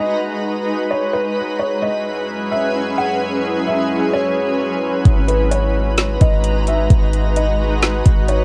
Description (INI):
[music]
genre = hip hop, atmospheric cloud-rap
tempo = 130 BPM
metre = 4/4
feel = half-time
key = G# minor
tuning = A4 = 440 Hz
[part]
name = felt-muted upright piano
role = melody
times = 0.0-8.4 s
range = B4 to F#5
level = -24 LUFS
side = equal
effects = cassette tape, tape echo
[part]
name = shimmering ambient pad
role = sustained chords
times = 0.0-8.4 s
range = F#3 to A#5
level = -23 LUFS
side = equal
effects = chorus, built-in reverb, sidechain pumping, cassette tape
[part]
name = drifting glass-harmonics texture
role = texture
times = 0.0-8.4 s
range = F#2 to B4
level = -30 LUFS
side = equal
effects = chorus, built-in reverb, cassette tape
[part]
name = clean 808-style bass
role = bass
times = 5.1-8.4 s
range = G#1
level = -19 LUFS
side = equal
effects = none
[part]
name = smooth R&B drum kit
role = drums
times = 5.1-8.4 s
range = hi-hat, kick drum, snare drum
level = -17 LUFS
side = equal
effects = cassette tape
[sound]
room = light reverb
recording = home recording on cassette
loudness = -18 LUFS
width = mono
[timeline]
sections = 0.0-8.4 A section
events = none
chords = 0.0 G#m7; 1.4 F#9sus4; 5.1 G#m7